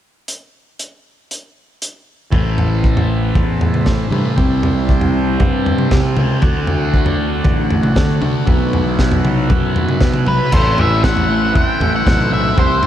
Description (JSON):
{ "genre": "psychedelic rock", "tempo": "117 BPM", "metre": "4/4", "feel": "straight", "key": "A dorian", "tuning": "A4 = 441 Hz", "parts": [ { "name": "crunchy breakbeat drum kit", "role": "drums", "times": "0.3-12.9 s", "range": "crash cymbal, hi-hat, kick drum, snare drum, toms", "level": "-16 LUFS", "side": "equal", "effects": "none" }, { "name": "combo organ", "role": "sustained chords", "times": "2.3-12.9 s", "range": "G3 to A5", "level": "-25 LUFS", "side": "right 3 dB", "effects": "none" }, { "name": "fuzz guitar", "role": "riff", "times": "2.3-12.9 s", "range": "A2 to D4", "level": "-19 LUFS", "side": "equal", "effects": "distortion, phaser" }, { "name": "fuzz fingered electric bass", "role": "bass", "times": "2.3-12.9 s", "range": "A1 to D3", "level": "-20 LUFS", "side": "equal", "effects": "overdrive" }, { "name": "octave-fuzz lead guitar", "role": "melody", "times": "10.3-12.9 s", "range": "B4 to G5", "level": "-17 LUFS", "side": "left 1 dB", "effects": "distortion, ping-pong delay" } ], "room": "moderate huge ambient reverb, RT60 8.3 s", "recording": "dreamy mix soaked in reverb", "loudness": "-13 LUFS", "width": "side -11 dB against mid", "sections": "0.3-2.3 A section; 2.3-10.5 B section; 10.5-12.9 C section", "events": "none", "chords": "0.3 N.C.; 2.3 Amadd9; 4.4 C; 6.4 D; 8.5 Bsus4; 10.5 Amadd9", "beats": "| 0.28 0.79 1.30 1.82 | 2.33 2.84 3.36 3.87 | 4.38 4.89 5.41 5.92 | 6.43 6.94 7.46 7.97 | 8.48 8.99 9.50 10.02 | 10.53 11.04 11.55 12.06 | 12.57" }